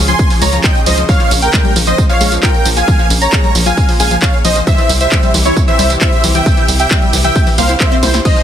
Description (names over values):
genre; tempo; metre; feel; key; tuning
uplifting trance; 134 BPM; 4/4; straight; unclear; A4 = 440 Hz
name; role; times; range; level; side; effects
clear symphonic string section; sustained chords; 0.0-8.4 s; C3 to Ab4; -24 LUFS; left 1 dB; sidechain pumping
tight sequencer bass; bass; 0.0-8.2 s; Bb1 to Db2; -15 LUFS; equal; sidechain pumping
dense compressed supersaw; melody; 0.1-8.4 s; E4 to C6; -16 LUFS; right 1 dB; sidechain pumping, tape echo
plucky unison lead; second line; 0.1-8.4 s; C5 to C6; -20 LUFS; right 1 dB; sidechain pumping, digital delay
analog pluck; arpeggios; 0.1-8.4 s; E3 to F4; -20 LUFS; left 4 dB; chorus, sidechain pumping, digital delay
punchy analog drum machine; drums; 0.1-8.4 s; crash cymbal, handclaps, hi-hat, snare drum, tambourine; -17 LUFS; right 2 dB; sidechain pumping on hats, sidechain pumping on cymbals, sidechain pumping on perc
electronic kick drum; drums; 0.2-8.3 s; none; -13 LUFS; equal; none
room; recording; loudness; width
little or no reverb; dense, heavily limited modern master; -9 LUFS; side -10 dB against mid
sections
0.0-8.4 A section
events
drum fill 8.0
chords
0.0 Db; 1.1 Bbmadd9; 4.7 C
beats
0.19 0.64 | 1.09 1.53 1.98 2.43 | 2.88 3.33 3.77 4.22 | 4.67 5.12 5.57 6.01 | 6.46 6.91 7.36 7.80 | 8.25